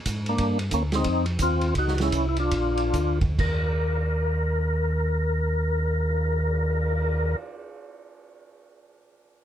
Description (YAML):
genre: soul jazz organ trio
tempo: 128-183 BPM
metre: 4/4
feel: swing 63% on 8ths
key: Eb major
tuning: A4 = 441 Hz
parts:
  - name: mellow tonewheel organ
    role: bass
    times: 0.1-7.4 s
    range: Bb1 to Ab2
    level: -25 LUFS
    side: equal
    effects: slow rotary speaker
  - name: vintage drum kit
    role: drums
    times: 0.1-7.0 s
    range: crash cymbal, cymbal swell, hi-hat, kick drum, ride cymbal, snare drum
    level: -31 LUFS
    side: right 2 dB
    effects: none
  - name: percussive tonewheel organ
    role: melody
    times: 0.3-7.4 s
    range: Bb3 to Bb4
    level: -26 LUFS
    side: left 1 dB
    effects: slow rotary speaker, overdrive, chorus vibrato
room: little or no reverb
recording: none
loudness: -22 LUFS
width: side -10 dB against mid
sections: 0.0-3.4 A section; 3.4-7.1 B section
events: slowing down 0.4-3.4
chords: 0.4 Gm; 1.1 F5; 1.8 Ebm13; 2.5 Bb; 3.4 Eb5